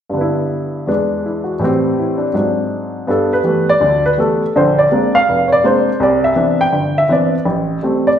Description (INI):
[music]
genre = jazz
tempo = 164 BPM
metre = 4/4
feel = swing 64% on 8ths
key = G major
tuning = A4 = 440 Hz
[part]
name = warm baby grand piano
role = solo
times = 0.1-8.2 s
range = F1 to G5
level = -13 LUFS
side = equal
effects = none
[sound]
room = wet large studio reverb, RT60 1.3 s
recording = heard from further back in the room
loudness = -13 LUFS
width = side -9 dB against mid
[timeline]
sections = 0.1-3.1 A section; 3.1-8.2 B section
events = none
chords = 0.1 G6; 0.9 E7; 1.6 Am7; 2.3 Ab7#11; 3.1 G69; 4.5 Bb9; 6.0 Cmaj9; 7.5 Am7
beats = | 0.14 0.51 0.87 1.24 | 1.61 1.97 2.34 2.71 | 3.07 3.44 3.80 4.17 | 4.54 4.90 5.27 5.63 | 6.00 6.36 6.73 7.10 | 7.46 7.83